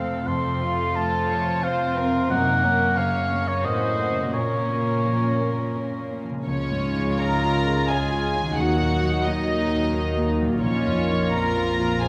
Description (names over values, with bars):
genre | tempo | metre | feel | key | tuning
cinematic | 87 BPM | 3/4 | uneven beats, rubato | Bb harmonic minor, Db major from 6.5 s | A4 = 439 Hz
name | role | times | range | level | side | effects
warm studio violin section | melody | 0.0-12.1 s | Gb4 to Bb5 | -32 LUFS | equal | none
warm oboe | second line | 0.0-6.1 s | Db5 to C6 | -27 LUFS | equal | none
warm studio violin section | second line | 0.0-12.1 s | C4 to Bb4 | -34 LUFS | equal | none
warm grand piano | accompaniment | 0.0-12.1 s | Bb1 to Db5 | -32 LUFS | equal | none
warm studio viola section | accompaniment | 0.0-12.1 s | F3 to C5 | -32 LUFS | equal | none
concert harp | arpeggios | 0.0-12.1 s | F2 to C6 | -34 LUFS | equal | none
warm studio cello section | bass | 0.0-12.1 s | F2 to Eb3 | -32 LUFS | equal | none
mellow French horn section | sustained chords | 6.5-12.1 s | Ab3 to F4 | -31 LUFS | equal | none
dark symphonic double bass section | bass | 6.5-12.1 s | Bb1 to Eb2 | -32 LUFS | equal | none
room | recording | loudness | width
wet scoring stage reverb, RT60 1.9 s | none | -23 LUFS | mono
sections
0.0-6.5 A section; 6.5-12.1 B section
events
none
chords
0.0 F; 2.3 Gb; 4.3 Bbm; 6.5 Db; 8.6 Ebm; 10.6 Bbmadd9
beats
| 0.28 0.97 1.64 | 2.31 2.97 3.64 | 4.34 5.04 5.75 | 6.47 7.20 7.89 | 8.57 9.25 9.94 | 10.62 11.34 12.02